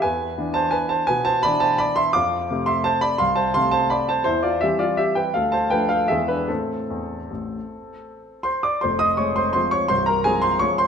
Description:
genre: classical, piano waltz.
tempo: 146-180 BPM.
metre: 3/4.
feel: rubato.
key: A minor.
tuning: A4 = 441 Hz.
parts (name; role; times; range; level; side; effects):
clear grand piano; solo; 0.0-10.9 s; C1 to Eb6; -19 LUFS; equal; none.
room: moderate recital hall reverb, RT60 1.8 s.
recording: minimal, uncompressed stereo recording.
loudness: -18 LUFS.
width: side -7 dB against mid.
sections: 0.0-8.8 A section; 8.8-10.9 B section.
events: none.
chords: 0.0 E7; 2.2 F; 4.3 C/E; 5.4 Dm; 6.1 E; 6.5 Am; 8.8 Fm.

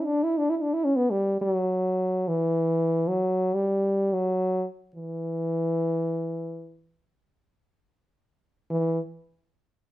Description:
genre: Arabic maqam ensemble.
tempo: free time.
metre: none.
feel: none.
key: E minor.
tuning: A4 = 439 Hz.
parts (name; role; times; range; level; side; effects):
dark French horn; solo; 0.0-9.0 s; E3 to E4; -24 LUFS; equal; none.
room: moderate studio reverb, RT60 0.7 s.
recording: none.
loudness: -24 LUFS.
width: side -16 dB against mid.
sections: 0.0-8.7 A section; 8.7-9.9 B section.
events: none.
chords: none.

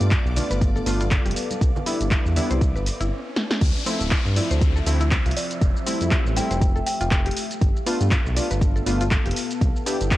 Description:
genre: deep house.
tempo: 120 BPM.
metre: 4/4.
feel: swing 57% on 16ths.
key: D dorian.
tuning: A4 = 440 Hz.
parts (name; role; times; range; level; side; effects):
deep dark ambient pad; sustained chords; 0.0-10.2 s; F3 to F5; -33 LUFS; left 2 dB; chorus, built-in reverb, sidechain pumping.
warm analog keys; stabs; 0.0-10.2 s; F3 to G4; -28 LUFS; equal; chorus, sidechain pumping, tape echo.
smooth synth bass; bass; 0.0-10.1 s; D1 to G2; -23 LUFS; equal; sidechain pumping.
punchy analog drum machine; drums; 0.0-10.2 s; crash cymbal, handclaps, hi-hat, shaker, snare drum; -28 LUFS; equal; small room ambience.
riser and downlifter; sound effects; 2.6-7.6 s; none; -36 LUFS; equal; none.
string machine, violins; texture; 0.0-3.1 s; D5 to D6; -38 LUFS; equal; ensemble chorus, sidechain pumping.
mallet-like synth pluck; arpeggios; 0.1-10.2 s; B3 to E5; -34 LUFS; left 2 dB; chorus, sidechain pumping, tape echo.
electronic kick drum; drums; 0.1-10.2 s; none; -21 LUFS; equal; small room ambience.
congas; percussion; 0.4-2.6 s; none; -35 LUFS; right 3 dB; none.
buzzing kalimba; melody; 5.4-7.1 s; D5 to G5; -31 LUFS; equal; tape echo.
room: little or no reverb.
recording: dry, gritty hardware recording, transformer saturation, cassette tape.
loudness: -19 LUFS.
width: side -16 dB against mid.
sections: 0.0-3.6 A section; 3.6-10.2 B section.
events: stop 3.1-3.6; drum fill 3.4; drop 3.6-10.2.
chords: 0.0 G9; 1.6 Cmaj7; 3.6 Dm9; 5.6 Fmaj9; 7.4 G9; 9.6 Cmaj7.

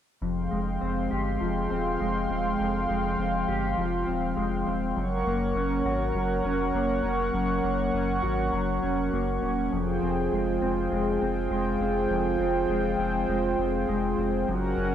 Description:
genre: dream pop.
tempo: 101 BPM.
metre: 4/4.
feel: straight.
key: F minor.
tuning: A4 = 441 Hz.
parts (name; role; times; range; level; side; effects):
warm analog pad; sustained chords; 0.2-14.9 s; Ab3 to Db6; -28 LUFS; right 1 dB; chorus.
mellow electric guitar; arpeggios; 0.2-14.9 s; F2 to G4; -29 LUFS; left 2 dB; analog chorus, analog delay.
saturated sub bass; bass; 0.2-14.9 s; Eb1 to Ab1; -32 LUFS; equal; none.
room: light reverb, digital ambience.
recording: dry, gritty hardware recording, cassette tape.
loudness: -24 LUFS.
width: side -10 dB against mid.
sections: 0.2-9.7 A section; 9.7-14.9 B section.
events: none.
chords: 0.2 Fmadd9; 5.0 Gb; 9.7 Fmadd9.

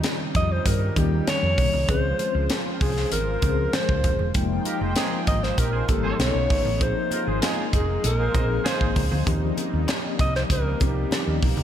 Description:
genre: polished 1980s jazz-funk pop.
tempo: 98 BPM.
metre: 4/4.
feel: straight.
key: unclear.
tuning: A4 = 441 Hz.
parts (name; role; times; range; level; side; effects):
mellow tine electric piano; accompaniment; 0.0-11.6 s; Eb3 to G5; -29 LUFS; left 4 dB; medium stereo tremolo, analog chorus.
lush unison pad; sustained chords; 0.0-11.6 s; Db3 to G5; -33 LUFS; equal; chorus.
tight funk drum kit; drums; 0.0-11.6 s; hi-hat, kick drum, snare drum; -25 LUFS; equal; none.
congas; percussion; 0.0-11.6 s; none; -39 LUFS; right 2 dB; none.
hollow-body short-scale fingered electric bass; bass; 0.3-11.6 s; Eb1 to G2; -25 LUFS; equal; none.
breathy alto saxophone; melody; 0.4-11.4 s; G4 to Eb5; -28 LUFS; equal; slapback echo.
mellow horn section; second line; 4.7-8.9 s; C4 to Eb5; -32 LUFS; right 4 dB; slapback echo, digital delay.
room: moderate lush hall reverb, RT60 2.3 s.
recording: big arena sound.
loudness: -20 LUFS.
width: side -10 dB against mid.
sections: 0.0-11.6 A section.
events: none.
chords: 0.0 Eb13; 1.9 Dbmaj7; 4.3 Fm11; 6.2 B9; 6.8 Bb9sus4; 9.3 Eb13.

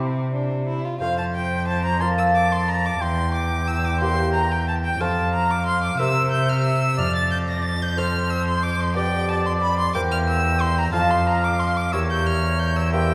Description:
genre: classical, baroque-style sonata movement with continuo.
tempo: 60 BPM (dotted quarters).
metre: 6/8.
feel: straight.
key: F major.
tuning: A4 = 439 Hz.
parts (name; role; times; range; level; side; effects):
rich violin; second line; 0.0-13.1 s; C4 to Bb6; -28 LUFS; equal; none.
lute; accompaniment; 0.0-13.1 s; E2 to D5; -30 LUFS; equal; none.
rich cello; bass; 0.0-13.1 s; E2 to C3; -25 LUFS; equal; none.
warm oboe; melody; 1.0-13.1 s; C5 to A5; -29 LUFS; equal; none.
room: wet concert hall reverb, RT60 2.3 s.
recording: none.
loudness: -22 LUFS.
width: mono.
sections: 0.0-1.0 A section; 1.0-13.1 A section.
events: none.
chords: 0.0 C; 1.0 F; 2.0 Bb5/F; 3.0 C7/E; 5.0 F; 6.0 C7; 7.0 F; 9.0 G7/F; 9.9 C7/E; 10.9 F; 11.9 Edim7.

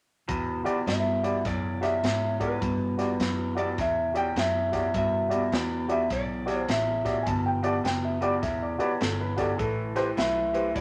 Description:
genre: electric blues shuffle.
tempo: 103 BPM.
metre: 4/4.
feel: swing 64% on 8ths.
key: E minor.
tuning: A4 = 442 Hz.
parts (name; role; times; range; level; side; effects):
electric guitar through a small old amp; riff; 0.3-10.8 s; E2 to F#3; -33 LUFS; equal; none.
vintage muted fingered electric bass; bass; 0.3-10.8 s; E1 to G#2; -35 LUFS; equal; none.
swinging big-band drum kit; drums; 0.3-10.8 s; hi-hat, kick drum, snare drum; -36 LUFS; equal; none.
dark baby grand piano; accompaniment; 0.6-10.7 s; F#4 to D5; -32 LUFS; equal; none.
electric guitar through a small old amp; melody; 0.9-10.8 s; B4 to G5; -31 LUFS; equal; none.
dark upright piano; second line; 7.2-10.1 s; G#4 to A5; -34 LUFS; equal; none.
room: moderate studio ambience, RT60 0.5 s.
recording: none.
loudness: -27 LUFS.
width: mono.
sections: 0.3-10.8 A section.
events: none.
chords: 0.3 Em9; 9.6 Am9.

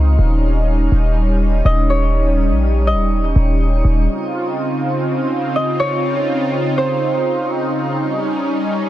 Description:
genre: hip hop.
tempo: 123 BPM.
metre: 4/4.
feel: half-time.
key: Db lydian.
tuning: A4 = 444 Hz.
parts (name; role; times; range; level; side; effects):
concert harp; melody; 0.0-8.8 s; C5 to Eb5; -23 LUFS; equal; digital delay.
warm analog pad; sustained chords; 0.0-8.9 s; Db3 to F4; -19 LUFS; equal; chorus.
warm 808-style bass; bass; 0.0-4.1 s; Eb1 to Db2; -14 LUFS; equal; none.
room: little or no reverb.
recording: dense, heavily limited modern master.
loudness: -15 LUFS.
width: side -13 dB against mid.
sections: 0.0-4.1 A section; 4.1-8.9 B section.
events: none.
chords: 0.2 Eb7; 4.1 Dbmaj9; 8.0 Eb7.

